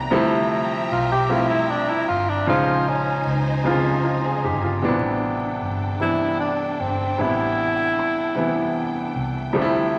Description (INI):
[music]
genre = slow six-eight R&B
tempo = 51 BPM (dotted quarters)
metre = 6/8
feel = straight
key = unclear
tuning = A4 = 440 Hz
[part]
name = warm baby grand piano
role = accompaniment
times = 0.0-10.0 s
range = B2 to C5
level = -25 LUFS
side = equal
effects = none
[part]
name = warm studio string section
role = sustained chords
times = 0.0-10.0 s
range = F3 to Bb5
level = -32 LUFS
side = equal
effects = none
[part]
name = vintage muted fingered electric bass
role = bass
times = 0.0-10.0 s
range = G1 to D2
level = -31 LUFS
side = equal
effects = none
[part]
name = breathy tenor saxophone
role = melody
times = 0.9-9.1 s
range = C4 to G4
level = -25 LUFS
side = equal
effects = none
[sound]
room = wet large studio reverb, RT60 1.5 s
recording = vinyl crackle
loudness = -22 LUFS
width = mono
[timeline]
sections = 0.0-4.8 A section; 4.8-10.0 B section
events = tenor saxophone solo 0.0-4.8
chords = 0.1 Dm11; 2.5 Bbm11; 4.8 Am11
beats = | 0.11 1.29 | 2.47 3.64 | 4.82 6.00 | 7.17 8.35 | 9.53